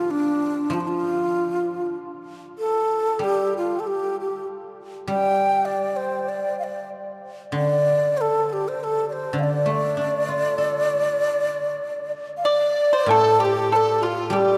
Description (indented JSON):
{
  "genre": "chinese traditional, Chinese chamber ensemble",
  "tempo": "97 BPM",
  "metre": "4/4",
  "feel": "straight",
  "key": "D yu mode",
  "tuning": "A4 = 440 Hz",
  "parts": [
    { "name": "breathy bright low xiao", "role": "melody", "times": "0.0-14.6 s", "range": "D4 to G5", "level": "-24 LUFS", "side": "equal", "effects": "none" },
    { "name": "guzheng", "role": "accompaniment", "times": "0.0-14.6 s", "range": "A2 to A4", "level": "-30 LUFS", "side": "equal", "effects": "none" },
    { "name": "hollow large dizi", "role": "second line", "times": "12.4-14.6 s", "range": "F4 to D5", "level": "-27 LUFS", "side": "equal", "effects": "none" },
    { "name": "pipa", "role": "second line", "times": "12.4-14.6 s", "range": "F4 to D5", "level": "-25 LUFS", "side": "equal", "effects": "none" },
    { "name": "woodblock", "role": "percussion", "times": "13.1-14.5 s", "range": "none", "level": "-35 LUFS", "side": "equal", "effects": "none" }
  ],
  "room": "wet cathedral reverb, RT60 5.4 s",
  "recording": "in a vast, echoing space",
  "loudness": "-22 LUFS",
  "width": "mono",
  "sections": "0.0-13.1 A section; 13.1-14.6 B section",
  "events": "none",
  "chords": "none"
}